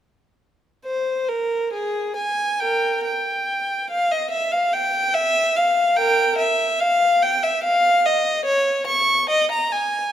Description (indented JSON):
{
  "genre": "classical, baroque-style suite movement for unaccompanied violin",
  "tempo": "68-73 BPM",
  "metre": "4/4",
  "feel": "rubato",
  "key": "unclear",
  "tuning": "A4 = 440 Hz",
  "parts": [
    { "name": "rich violin", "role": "solo", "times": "0.9-10.1 s", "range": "Ab4 to Db6", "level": "-18 LUFS", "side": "equal", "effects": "none" }
  ],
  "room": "moderate recital hall reverb, RT60 1.8 s",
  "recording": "none",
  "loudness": "-18 LUFS",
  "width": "side -10 dB against mid",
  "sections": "0.8-10.1 A section",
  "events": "none",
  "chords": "none"
}